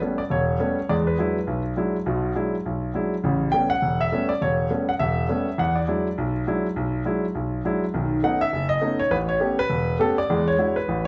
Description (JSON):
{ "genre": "jazz", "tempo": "204 BPM", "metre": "4/4", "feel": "swing 59% on 8ths", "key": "E mixolydian", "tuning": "A4 = 440 Hz", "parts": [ { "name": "clear grand piano", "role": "solo", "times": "0.0-11.1 s", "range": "E1 to G5", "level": "-24 LUFS", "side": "equal", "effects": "none" } ], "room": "wet large studio reverb, RT60 0.8 s", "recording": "band playing live in one room, nothing above 8.0 kHz", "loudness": "-24 LUFS", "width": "mono", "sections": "0.0-11.1 A section", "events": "none", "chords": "0.0 A9; 0.9 E9; 3.2 A9; 5.6 E9; 7.9 B9; 9.1 A9; 10.3 E9", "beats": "0.01 0.31 0.60 | 0.89 1.19 1.48 1.77 | 2.07 2.36 2.65 2.95 | 3.24 3.53 3.83 4.12 | 4.41 4.71 5.00 5.29 | 5.59 5.88 6.17 6.47 | 6.76 7.05 7.35 7.64 | 7.93 8.23 8.52 8.82 | 9.11 9.40 9.70 9.99 | 10.29 10.58 10.87" }